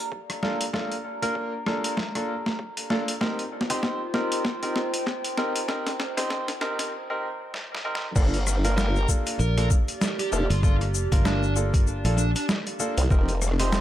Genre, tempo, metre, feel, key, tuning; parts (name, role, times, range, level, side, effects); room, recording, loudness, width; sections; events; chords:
glitch hop; 97 BPM; 4/4; swing 58% on 16ths; G minor; A4 = 436 Hz
warbly tape-like pad; texture; 0.0-13.8 s; F4 to Bb5; -34 LUFS; right 1 dB; chorus, built-in reverb, sidechain pumping
electronic kick drum; drums; 0.1-13.2 s; -22 LUFS; equal; overdrive, high-pass filter on kick, studio reverb
boom bap sampler-style drum kit; drums; 0.3-13.8 s; crash cymbal, hi-hat, rim click, shaker, snare drum; -29 LUFS; equal; overdrive, studio reverb
bright baby grand piano; stabs; 0.4-13.8 s; Bb3 to C5; -30 LUFS; equal; sidechain pumping, tape echo
formant-sweep wobble bass; bass; 8.2-13.8 s; F1 to C2; -24 LUFS; equal; chorus, tube saturation
dark smooth lead guitar; melody; 8.8-12.4 s; D4 to Bb4; -32 LUFS; equal; overdrive, tape echo
fingered electric bass; bass; 9.4-12.3 s; G1 to Bb1; -24 LUFS; equal
light reverb; echo-heavy mix, high-pass filter; -23 LUFS; side -12 dB against mid
0.0-8.2 A section; 8.2-13.8 B section
build-up 0.0-8.2; drum fill 0.0-6.9, 7.5-8.2; break 6.9-8.2; drop 8.2-13.8
0.0 Gm7; 3.2 F7sus4; 8.2 Gm7; 13.1 F7sus4